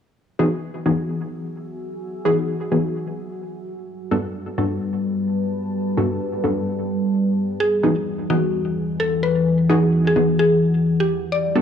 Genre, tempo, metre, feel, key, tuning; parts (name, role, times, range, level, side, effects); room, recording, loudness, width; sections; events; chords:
UK garage; 129 BPM; 4/4; swing 62% on 16ths; E major; A4 = 441 Hz
deep dark ambient pad; texture; 1.4-11.6 s; E3 to E6; -22 LUFS; left 1 dB; chorus, built-in reverb
punchy chord stab; stabs; 0.4-11.6 s; G2 to A4; -22 LUFS; equal; chorus, tape echo
mallet-like synth pluck; melody; 7.6-11.5 s; F#4 to D5; -21 LUFS; left 1 dB; chorus
riser; sound effects; 11.5-11.6 s; -42 LUFS; right 1 dB
moderate lush hall reverb, RT60 2.6 s; dry, gritty hardware recording, studio ambience; -18 LUFS; side -8 dB against mid
0.2-11.6 A section
0.2 Emaj9; 3.6 Gmaj9; 7.6 Emaj9; 11.1 Gmaj9